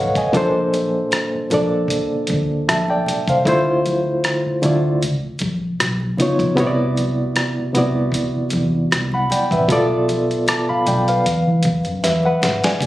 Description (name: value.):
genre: R&B, neo-soul.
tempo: 77 BPM.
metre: 4/4.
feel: swing 54% on 16ths.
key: unclear.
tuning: A4 = 440 Hz.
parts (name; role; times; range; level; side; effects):
barky reed electric piano; accompaniment; 0.0-12.9 s; Bb2 to D6; -18 LUFS; equal; overdrive, medium tremolo, plate reverb.
vintage muted fingered electric bass; bass; 0.0-12.9 s; G#1 to E3; -22 LUFS; equal; none.
dusty soul sampler-style drum kit; drums; 0.2-12.9 s; hi-hat, kick drum, rim click, snare drum; -21 LUFS; equal; none.
congas; percussion; 0.3-12.9 s; none; -31 LUFS; right 1 dB; none.
room: moderate studio ambience, RT60 0.5 s.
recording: recorded on a phone in the room, studio reverb, compression.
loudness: -16 LUFS.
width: side -15 dB against mid.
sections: 0.0-12.8 A section.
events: drum fill 12.0-12.8.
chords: 0.3 Bbmaj7; 3.5 Dm7; 5.0 C#9; 6.6 Cmaj9#11; 9.7 Bm7b5; 11.2 E.